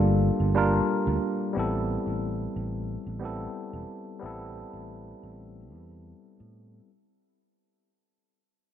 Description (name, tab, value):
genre	sunset chillout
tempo	90 BPM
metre	4/4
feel	straight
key	unclear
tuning	A4 = 440 Hz
part	barky tine electric piano	accompaniment	0.0-6.9 s	G3 to Bb4	-28 LUFS	equal	auto-pan, vintage 12-bit sampler grit, low-pass filter, tape echo
part	sustaining fretless electric bass	bass	0.0-6.8 s	E1 to A2	-30 LUFS	equal	analog chorus
room	moderate lush hall reverb, RT60 2.0 s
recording	none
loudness	-25 LUFS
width	side -10 dB against mid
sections	0.0-6.9 A section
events	fade-out 0.0-6.9; filter sweep on tine electric piano 0.0-6.9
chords	0.0 Gm9; 1.6 Am9